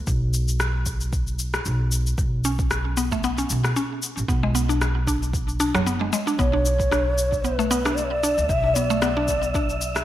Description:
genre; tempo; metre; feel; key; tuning
organic downtempo; 114 BPM; 4/4; swing 55% on 16ths; B dorian; A4 = 440 Hz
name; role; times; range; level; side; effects
upright bass; bass; 0.0-10.0 s; F#1 to D2; -25 LUFS; equal; sidechain pumping
electronic cabasa and rim click; drums; 0.1-10.0 s; none; -29 LUFS; left 2 dB; none
electronic kick drum; drums; 0.1-9.7 s; none; -26 LUFS; equal; none
mallet-like synth pluck; arpeggios; 2.4-9.7 s; F#3 to D4; -25 LUFS; equal; chorus, digital delay
breathy mellow low ney; melody; 6.4-9.8 s; B4 to E5; -24 LUFS; equal; digital delay
wind-like tuned noise texture; texture; 7.1-10.0 s; E5; -33 LUFS; right 2 dB; built-in reverb
room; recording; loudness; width
moderate plate reverb, RT60 1.7 s, digital ambience; bright 1980s-style digital production; -20 LUFS; side -13 dB against mid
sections
0.0-10.0 A section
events
none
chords
0.0 N.C.; 2.2 Aadd9 (rootless); 4.3 Bm6; 6.4 Bm

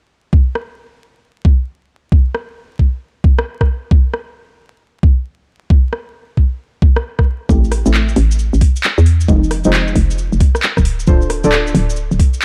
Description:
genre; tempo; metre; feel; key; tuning
UK garage, two-step garage; 134 BPM; 4/4; swing 64% on 16ths; A minor; A4 = 441 Hz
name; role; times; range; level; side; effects
electronic kick drum; drums; 0.3-12.3 s; none; -13 LUFS; equal; overdrive
garage drum kit; drums; 0.6-12.4 s; handclaps, hi-hat, rim click; -21 LUFS; equal; overdrive
deep mellow chord stab; stabs; 7.5-11.6 s; F3 to D5; -21 LUFS; equal; chorus, dub echo
hollow knocking FM bass; bass; 7.5-12.2 s; D1 to E2; -16 LUFS; equal; none
cabasa; percussion; 7.5-12.4 s; none; -34 LUFS; equal; none
room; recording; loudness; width
little or no reverb; dark, warm production, vinyl crackle; -15 LUFS; mono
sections
0.3-12.4 A section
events
none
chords
0.3 N.C.; 7.5 Am7; 9.3 Fm7; 10.9 Dm7

